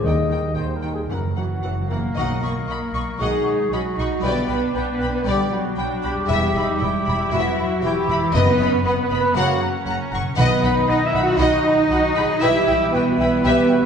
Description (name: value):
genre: cinematic, heroic adventure film score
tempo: 117 BPM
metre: 4/4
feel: straight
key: B major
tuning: A4 = 440 Hz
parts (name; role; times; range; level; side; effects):
- warm symphonic violin section; second line; 0.0-13.7 s; Db4 to B5; -30 LUFS; left 4 dB; none
- rich chamber viola section; accompaniment; 0.0-13.9 s; Eb3 to G#4; -28 LUFS; right 1 dB; none
- concert harp; arpeggios; 0.0-13.9 s; E2 to G5; -33 LUFS; left 7 dB; none
- dark trumpet section; stabs; 0.0-13.9 s; E4 to F#5; -25 LUFS; equal; none
- rich symphonic double bass section; bass; 0.0-13.5 s; E1 to Eb2; -26 LUFS; right 1 dB; none
- warm symphonic cello section; bass; 0.0-13.9 s; Eb2 to F#4; -26 LUFS; right 3 dB; none
- timpani; percussion; 0.0-2.9, 8.3-11.1 s; F#2 to Eb3; -26 LUFS; left 1 dB; none
- rich symphonic violin section; melody; 0.1-13.7 s; D5 to C#6; -29 LUFS; left 4 dB; none
- mellow trombone section; sustained chords; 0.1-13.9 s; C#3 to B3; -31 LUFS; right 1 dB; none
- clear clarinet; second line; 1.4-13.9 s; E4 to F#5; -26 LUFS; equal; none
- dark French horn section; sustained chords; 1.4-13.9 s; E3 to F#4; -27 LUFS; right 1 dB; none
- concert flute; second line; 2.2-13.8 s; G5 to C#6; -32 LUFS; left 2 dB; none
- warm oboe; second line; 2.2-13.8 s; D#5 to G5; -32 LUFS; equal; none
room: wet recital hall reverb, RT60 1.5 s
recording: recorded in a church or concert hall, nothing above 10.3 kHz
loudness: -18 LUFS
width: side -7 dB against mid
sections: 0.0-2.2 A section; 2.2-13.9 B section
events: none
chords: 0.0 Eb; 1.1 Gb7; 2.2 Badd9; 4.2 G/B; 6.3 Em; 8.3 B/F#; 9.4 F#; 10.4 B; 12.4 Em/B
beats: | 0.04 0.56 1.10 1.64 | 2.17 2.69 3.20 3.72 | 4.24 4.76 5.27 5.78 | 6.29 6.81 7.33 7.84 | 8.34 8.85 9.36 9.87 | 10.38 10.88 11.40 11.90 | 12.42 12.93 13.44